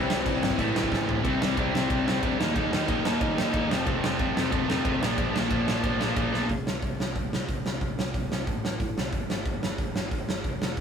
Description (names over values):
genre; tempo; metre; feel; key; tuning
punk rock; 183 BPM; 4/4; straight; unclear; A4 = 440 Hz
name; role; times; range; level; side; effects
crunchy overdriven guitar; riff; 0.0-6.5 s; F2 to Eb4; -28 LUFS; left 4 dB; none
tight distorted guitar; riff; 0.0-6.5 s; F2 to E4; -29 LUFS; right 6 dB; distortion
picked electric bass; bass; 0.0-10.8 s; F1 to A2; -34 LUFS; equal; none
big rock drum kit; drums; 0.1-10.8 s; crash cymbal, hi-hat, kick drum, ride cymbal, snare drum, toms; -28 LUFS; equal; none
room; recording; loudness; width
moderate small room reverb, RT60 0.5 s; rough rehearsal-room recording; -24 LUFS; side -7 dB against mid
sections
0.0-1.2 A section; 1.2-6.5 B section; 6.5-10.8 C section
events
drum fill 0.9-1.2, 6.3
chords
0.0 C; 0.6 Am; 1.2 C; 2.4 Eb; 3.7 F; 5.0 Bb; 6.5 Am; 9.1 N.C.